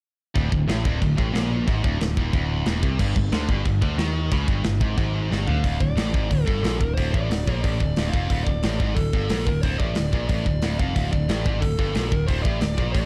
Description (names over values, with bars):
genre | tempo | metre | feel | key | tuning
heavy metal | 181 BPM | 4/4 | straight | D minor | A4 = 445 Hz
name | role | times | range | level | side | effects
heavy high-gain guitar | riff | 0.4-13.1 s | D2 to Eb3 | -29 LUFS | equal | distortion
modern bright picked electric bass | bass | 0.4-13.1 s | D1 to Eb2 | -28 LUFS | equal | none
tight metal drum kit | drums | 0.4-13.0 s | china cymbal, crash cymbal, hi-hat, kick drum, snare drum, toms | -27 LUFS | equal | none
high-gain lead guitar | melody | 5.5-13.1 s | A4 to F5 | -33 LUFS | equal | distortion
room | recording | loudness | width
studio reverb | dark, warm production | -23 LUFS | mono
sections
0.4-5.6 A section; 5.6-13.1 B section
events
drum fill 5.3-5.6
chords
0.4 D5; 3.0 G5; 5.6 D5